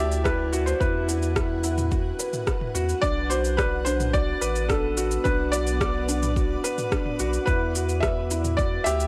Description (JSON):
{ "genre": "piano and strings electronica", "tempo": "108 BPM", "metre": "4/4", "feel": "straight", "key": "unclear", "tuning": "A4 = 440 Hz", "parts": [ { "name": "felt-muted upright piano", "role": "melody", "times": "0.0-9.1 s", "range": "A4 to E5", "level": "-30 LUFS", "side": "equal", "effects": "none" }, { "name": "granular cloud pad", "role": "sustained chords", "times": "0.0-9.1 s", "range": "B3 to F#5", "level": "-38 LUFS", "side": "equal", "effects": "built-in reverb" }, { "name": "felt-muted upright piano", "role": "riff", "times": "0.0-9.1 s", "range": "D4 to D5", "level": "-31 LUFS", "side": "equal", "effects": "none" }, { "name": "round analog bass", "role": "bass", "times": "0.0-9.1 s", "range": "A1 to E2", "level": "-30 LUFS", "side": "equal", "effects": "sidechain pumping" }, { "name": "deep house drum kit", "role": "drums", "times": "0.1-9.1 s", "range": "rim click, shaker, toms", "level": "-33 LUFS", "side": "equal", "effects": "overdrive" }, { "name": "electronic kick drum", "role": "drums", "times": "0.3-8.7 s", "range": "none", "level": "-30 LUFS", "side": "equal", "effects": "overdrive" } ], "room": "light reverb", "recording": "none", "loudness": "-25 LUFS", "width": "mono", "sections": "0.0-9.1 A section", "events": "none", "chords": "0.0 Emadd9; 3.0 Bm; 7.5 Emadd9", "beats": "0.25 | 0.81 1.36 1.92 2.48 | 3.03 3.59 4.14 4.70 | 5.25 5.81 6.36 6.92 | 7.47 8.03 8.59" }